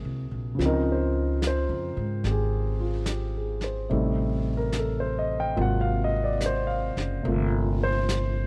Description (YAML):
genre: jazz ballad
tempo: 72 BPM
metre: 4/4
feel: swing 66% on 8ths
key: unclear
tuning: A4 = 441 Hz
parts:
  - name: dark grand piano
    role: accompaniment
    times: 0.0-8.5 s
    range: C3 to G5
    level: -30 LUFS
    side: equal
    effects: none
  - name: upright bass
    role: bass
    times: 0.0-8.5 s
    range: Gb1 to Ab2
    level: -30 LUFS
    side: equal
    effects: none
  - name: vintage brush drum kit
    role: drums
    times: 0.6-8.5 s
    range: brushed snare drum, hi-hat, snare drum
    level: -38 LUFS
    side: equal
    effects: none
room: small room reverb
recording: dry, close 1970s-style studio recording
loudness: -27 LUFS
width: mono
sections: 0.0-8.5 A section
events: none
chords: 0.0 Ab9; 0.6 Dbmaj9; 3.9 Am7b5; 5.6 Ab13; 7.3 Gm11